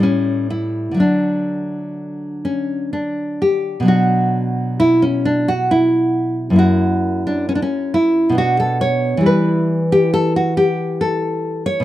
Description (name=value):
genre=classical, baroque-style dance for nylon-string guitar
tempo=61-70 BPM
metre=3/4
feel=rubato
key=D major, B minor from 3.9 s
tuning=A4 = 440 Hz
part: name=nylon-string guitar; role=solo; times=0.0-11.8 s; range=F#2 to C#5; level=-15 LUFS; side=equal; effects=none
room=little or no reverb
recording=recorded outdoors, with no room sound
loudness=-15 LUFS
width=side -14 dB against mid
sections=0.0-3.9 A section; 3.9-11.8 A section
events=none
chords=0.0 A7; 1.0 D; 3.9 Bm; 9.3 Em